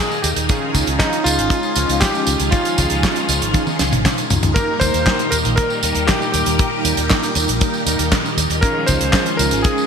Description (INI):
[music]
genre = italo disco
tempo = 118 BPM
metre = 4/4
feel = straight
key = unclear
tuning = A4 = 440 Hz
[part]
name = clear electric grand piano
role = melody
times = 0.0-9.9 s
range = Eb4 to C5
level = -22 LUFS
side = left 1 dB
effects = ping-pong delay, shimmer reverb
[part]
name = phased string machine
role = sustained chords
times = 0.0-9.9 s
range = Bb2 to G5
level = -22 LUFS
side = equal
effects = ensemble chorus, phaser, shimmer reverb
[part]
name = damped 70s drum kit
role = drums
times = 0.1-9.9 s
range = handclaps, hi-hat, snare drum, tambourine, toms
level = -20 LUFS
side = right 1 dB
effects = gated reverb
[part]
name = fingered electric bass with an envelope filter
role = bass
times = 0.2-9.6 s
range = Ab1 to Eb2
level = -23 LUFS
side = equal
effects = tube saturation
[part]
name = analog synth brass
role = stabs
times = 0.5-9.9 s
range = Ab3 to Bb4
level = -25 LUFS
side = right 3 dB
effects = chorus, cassette tape, shimmer reverb
[part]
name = kick drum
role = drums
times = 0.5-9.7 s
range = none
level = -18 LUFS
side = left 1 dB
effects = none
[sound]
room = moderate lush hall reverb, RT60 2.4 s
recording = bright 1980s-style digital production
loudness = -15 LUFS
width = side -6 dB against mid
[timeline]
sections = 0.0-9.9 A section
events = drum fill 3.5-4.6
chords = 0.5 Dbadd9; 4.6 Eb; 8.6 Dbadd9